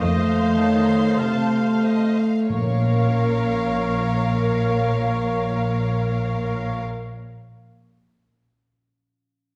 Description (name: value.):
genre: classical.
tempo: 49 BPM.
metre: 4/4.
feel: rubato.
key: Bb minor.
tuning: A4 = 440 Hz.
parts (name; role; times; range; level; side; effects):
rich studio violin section; melody; 0.0-6.8 s; F5; -38 LUFS; equal; none.
clear oboe; second line; 0.0-6.8 s; Db5 to F5; -35 LUFS; equal; none.
mellow hollow large flute ensemble; second line; 0.0-6.8 s; F5 to A5; -34 LUFS; equal; none.
warm clarinet; second line; 0.0-6.8 s; Bb4 to Db5; -35 LUFS; equal; none.
warm studio violin section; second line; 0.0-6.8 s; Db5 to C6; -37 LUFS; equal; none.
clear studio viola section; accompaniment; 0.0-6.8 s; Bb4 to C5; -35 LUFS; equal; none.
mellow French horn section; sustained chords; 0.0-6.8 s; A3 to Bb3; -25 LUFS; equal; none.
concert harp; arpeggios; 0.0-7.2 s; none; barely audible; none; none.
clear studio double bass section; bass; 0.0-6.8 s; Bb1 to F2; -28 LUFS; equal; none.
rich studio cello section; bass; 0.0-6.8 s; Bb2 to F3; -30 LUFS; equal; none.
timpani; percussion; 2.5-6.8 s; Bb2; -34 LUFS; equal; none.
room: wet recital hall reverb, RT60 1.5 s.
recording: heard from further back in the room.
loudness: -21 LUFS.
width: mono.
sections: 0.0-2.5 A section; 2.5-7.4 B section.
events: slowing down 0.0-2.5.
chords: 0.0 F7; 2.5 Bbm.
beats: 0.01 1.19 | 2.49 3.69 4.90 6.11.